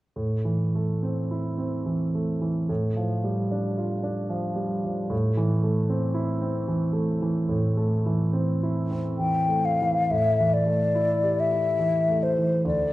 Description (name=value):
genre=classical, impressionist duo for flute and grand piano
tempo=64-77 BPM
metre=3/4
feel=rubato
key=A minor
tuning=A4 = 439 Hz
part: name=warm grand piano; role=accompaniment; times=0.2-12.9 s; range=D2 to G4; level=-24 LUFS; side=right 1 dB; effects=none
part: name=mellow hollow concert flute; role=melody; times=9.2-12.9 s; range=C5 to G5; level=-22 LUFS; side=left 3 dB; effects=none
room=wet recital hall reverb, RT60 1.4 s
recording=dark, warm production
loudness=-22 LUFS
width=side -16 dB against mid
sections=0.2-10.1 A section; 10.1-12.9 B section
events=none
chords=0.2 Am; 2.7 Gsus2/A; 5.1 Am; 10.1 A5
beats=| 0.17 1.03 1.86 | 2.69 3.51 4.32 | 5.12 5.91 6.69 | 7.49 8.33 9.19 | 10.10 10.95 11.80 | 12.65